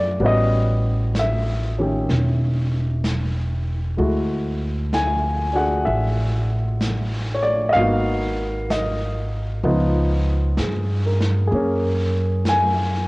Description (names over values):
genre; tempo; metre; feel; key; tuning
jazz ballad; 64 BPM; 4/4; swing 67% on 8ths; unclear; A4 = 440 Hz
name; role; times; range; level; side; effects
warm upright piano; accompaniment; 0.0-13.1 s; D#3 to G#5; -22 LUFS; equal; cassette tape
upright bass; bass; 0.0-13.1 s; E1 to G2; -21 LUFS; equal; none
vintage brush drum kit; drums; 0.2-13.1 s; brushed snare drum, hi-hat, snare drum; -31 LUFS; equal; cassette tape
room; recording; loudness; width
moderate spring reverb, RT60 2.4 s; home recording on cassette; -18 LUFS; side -23 dB against mid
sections
0.0-13.1 A section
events
none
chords
0.2 A13; 4.0 Dadd9; 7.8 G#m7; 9.6 C#9; 11.5 F#add9